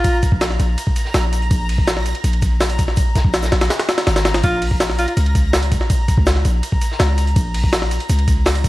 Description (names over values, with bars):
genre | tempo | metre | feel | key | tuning
drum and bass, jungle | 164 BPM | 4/4 | straight | Bb minor | A4 = 440 Hz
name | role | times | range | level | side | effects
bright alto saxophone | melody | 0.0-0.2, 4.4-5.1 s | F4 | -23 LUFS | equal | dub echo
crunchy breakbeat drum kit | drums | 0.0-8.7 s | hi-hat, shaker, snare drum | -30 LUFS | right 2 dB | high-pass filter on hats, high-pass filter on snare, high-pass filter on perc, high-pass filter on room
jungle sampler-style drum kit | drums | 0.0-8.7 s | hi-hat, kick drum, ride cymbal, snare drum | -18 LUFS | equal | none
backwards swelling texture | texture | 0.0-8.7 s | Bb5 | -29 LUFS | left 2 dB | built-in reverb
warm 808-style bass | bass | 0.3-8.7 s | Ab1 to Db2 | -18 LUFS | equal | none
room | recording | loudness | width
small room ambience | vinyl crackle | -15 LUFS | side -18 dB against mid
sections
0.0-8.7 A section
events
none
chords
0.0 N.C.; 4.4 Bbm